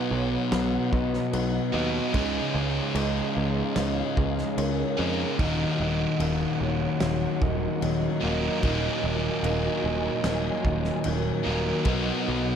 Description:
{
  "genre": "post-rock",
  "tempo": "74 BPM",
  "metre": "4/4",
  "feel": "straight",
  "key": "Eb minor",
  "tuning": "A4 = 440 Hz",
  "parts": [
    { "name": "muted studio string section", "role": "sustained chords", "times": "0.0-12.6 s", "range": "Eb4 to Ab5", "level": "-38 LUFS", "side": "left 2 dB", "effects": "none" },
    { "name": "electric guitar through a small old amp", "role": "arpeggios", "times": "0.0-12.6 s", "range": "Eb2 to D#4", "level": "-33 LUFS", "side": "left 3 dB", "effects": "digital delay" },
    { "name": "crunchy overdriven guitar", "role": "riff", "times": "0.0-12.6 s", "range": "Eb2 to Ab4", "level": "-30 LUFS", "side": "right 9 dB", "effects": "none" },
    { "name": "sludgy distorted guitar", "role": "riff", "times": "0.0-12.6 s", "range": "Eb2 to Db4", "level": "-30 LUFS", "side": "left 10 dB", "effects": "overdrive" },
    { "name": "vibraphone with soft mallets", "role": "arpeggios", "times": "0.1-12.6 s", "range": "Bb4 to D#5", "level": "-35 LUFS", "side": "right 5 dB", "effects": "digital delay" },
    { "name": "picked electric bass", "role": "bass", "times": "0.1-12.5 s", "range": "Eb1 to F2", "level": "-29 LUFS", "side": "right 1 dB", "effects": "none" },
    { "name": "loose indie drum kit", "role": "drums", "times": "0.5-12.0 s", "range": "crash cymbal, kick drum, snare drum", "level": "-33 LUFS", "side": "equal", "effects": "none" }
  ],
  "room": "light reverb, studio reverb",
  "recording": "none",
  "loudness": "-24 LUFS",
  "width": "side -8 dB against mid",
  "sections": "0.0-12.6 A section",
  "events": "none",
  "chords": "0.0 B; 2.1 Dbadd9; 5.4 Ebm; 11.9 B"
}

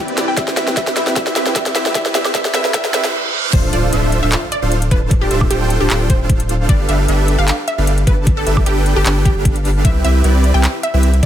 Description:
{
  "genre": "future bass",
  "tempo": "152 BPM",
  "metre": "4/4",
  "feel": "half-time",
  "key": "C major",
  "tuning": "A4 = 440 Hz",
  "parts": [
    { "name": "supersaw chords", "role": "riff", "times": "0.0-11.3 s", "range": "C4 to A5", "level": "-20 LUFS", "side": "right 2 dB", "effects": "sidechain pumping, digital delay" },
    { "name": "riser, reverse cymbal and impact", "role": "sound effects", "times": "0.0-5.1 s", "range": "none", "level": "-25 LUFS", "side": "right 2 dB", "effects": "none" },
    { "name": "trap drum kit", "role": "drums", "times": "0.1-11.3 s", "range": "crash cymbal, handclaps, hi-hat, snare drum, woodblock", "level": "-20 LUFS", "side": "equal", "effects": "none" },
    { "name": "felt-muted upright piano", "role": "accompaniment", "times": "0.2-3.1 s", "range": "C3 to G5", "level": "-27 LUFS", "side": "left 1 dB", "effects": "sidechain pumping, digital delay" },
    { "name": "wide unison pluck", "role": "melody", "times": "0.3-11.3 s", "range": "G4 to G5", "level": "-22 LUFS", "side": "equal", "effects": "auto-pan, sidechain pumping, dub echo" },
    { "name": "electronic kick drum", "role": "drums", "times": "0.4-11.3 s", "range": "none", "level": "-15 LUFS", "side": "equal", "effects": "overdrive" },
    { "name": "saturated sub bass", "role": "bass", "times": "3.5-11.3 s", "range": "D1 to C2", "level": "-16 LUFS", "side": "equal", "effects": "sidechain pumping" }
  ],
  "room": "light reverb, digital ambience",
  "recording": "high-pass filter",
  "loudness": "-13 LUFS",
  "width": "side -10 dB against mid",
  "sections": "0.0-3.5 A section; 3.5-11.3 B section",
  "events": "build-up 0.0-3.5; drum fill 0.0-3.1; reverse cymbal 2.7-3.5; drop 3.5-11.3; impact 3.5-5.1",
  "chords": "0.0 Cmaj9; 3.5 Dm7; 6.7 G9; 9.8 Cmaj7"
}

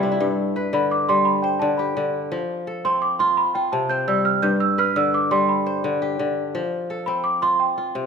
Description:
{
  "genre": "west african traditional, West African string and xylophone music",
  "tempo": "114 BPM (dotted quarters)",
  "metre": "12/8",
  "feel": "straight",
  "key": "G mixolydian",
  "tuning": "A4 = 440 Hz",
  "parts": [
    { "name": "kora", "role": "arpeggios", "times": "0.0-8.1 s", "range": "G2 to D5", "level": "-22 LUFS", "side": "left 2 dB", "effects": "none" },
    { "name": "worn celesta", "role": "melody", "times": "0.7-8.1 s", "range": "G5 to G6", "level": "-20 LUFS", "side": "right 3 dB", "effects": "none" }
  ],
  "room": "moderate recital hall reverb, RT60 1.5 s",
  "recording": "minimal, uncompressed stereo recording",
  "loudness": "-19 LUFS",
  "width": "side -6 dB against mid",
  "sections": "0.0-8.1 A section",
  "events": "kora fill 0.0",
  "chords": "0.2 G; 2.3 F; 3.4 C5; 4.4 G; 6.5 F"
}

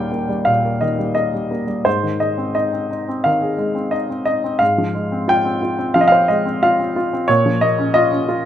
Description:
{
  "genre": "classical, lyrical solo piano",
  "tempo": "88 BPM",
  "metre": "4/4",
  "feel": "rubato",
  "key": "Ab major",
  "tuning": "A4 = 440 Hz",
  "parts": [
    { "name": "dark baby grand piano", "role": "solo", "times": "0.0-8.5 s", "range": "Eb2 to G5", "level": "-16 LUFS", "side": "equal", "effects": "none" }
  ],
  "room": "light reverb",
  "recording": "none",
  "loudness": "-15 LUFS",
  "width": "side -10 dB against mid",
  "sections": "0.0-8.5 A section",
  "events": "none",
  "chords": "0.0 Ebadd9; 1.9 Ab; 4.6 Fm/Ab; 7.3 Bbm"
}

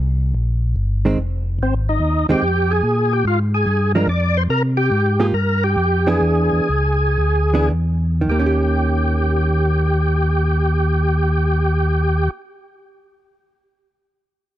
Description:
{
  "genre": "soul jazz organ trio",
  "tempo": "101-145 BPM",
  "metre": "4/4",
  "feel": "swing 66% on 8ths",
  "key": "Eb mixolydian",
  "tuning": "A4 = 440 Hz",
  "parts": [
    { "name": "mellow tonewheel organ", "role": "bass", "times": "0.0-12.3 s", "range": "F1 to C3", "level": "-18 LUFS", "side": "equal", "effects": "chorus vibrato, slow rotary speaker" },
    { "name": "hollow-body jazz guitar", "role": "accompaniment", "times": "1.1-12.5 s", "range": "Eb3 to Ab4", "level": "-22 LUFS", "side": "right 3 dB", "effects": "none" },
    { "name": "percussive tonewheel organ", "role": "melody", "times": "1.6-12.3 s", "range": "C4 to D5", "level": "-20 LUFS", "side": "equal", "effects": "slow rotary speaker, overdrive, chorus vibrato" }
  ],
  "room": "digital ambience",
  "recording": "dry, close 1970s-style studio recording",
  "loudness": "-16 LUFS",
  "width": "side -13 dB against mid",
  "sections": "0.0-1.2 A section; 1.2-8.3 B section; 8.3-13.0 C section",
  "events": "slowing down 4.5-8.3",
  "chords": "0.3 Gmadd11; 1.2 Fm7; 2.8 Bb7; 4.5 C7sus4; 6.2 E7; 8.3 Eb7"
}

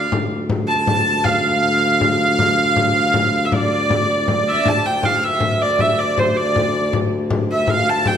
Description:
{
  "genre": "medieval dance",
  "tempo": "106 BPM (dotted quarters)",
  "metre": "6/8",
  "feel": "straight",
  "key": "D minor",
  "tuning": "A4 = 438 Hz",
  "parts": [
    { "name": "clear hurdy-gurdy", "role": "melody", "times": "0.0-8.2 s", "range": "C5 to A5", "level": "-17 LUFS", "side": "right 2 dB", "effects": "none" },
    { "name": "warm viola da gamba", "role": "drone", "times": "0.0-8.2 s", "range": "D2", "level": "-22 LUFS", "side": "left 1 dB", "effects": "none" },
    { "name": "frame drum", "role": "percussion", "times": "0.1-8.2 s", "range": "none", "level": "-22 LUFS", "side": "left 3 dB", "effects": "none" }
  ],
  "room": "wet recital hall reverb, RT60 1.7 s",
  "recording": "none",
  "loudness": "-15 LUFS",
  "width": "side -8 dB against mid",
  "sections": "0.0-4.7 A section; 4.7-8.2 B section",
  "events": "none",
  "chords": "none"
}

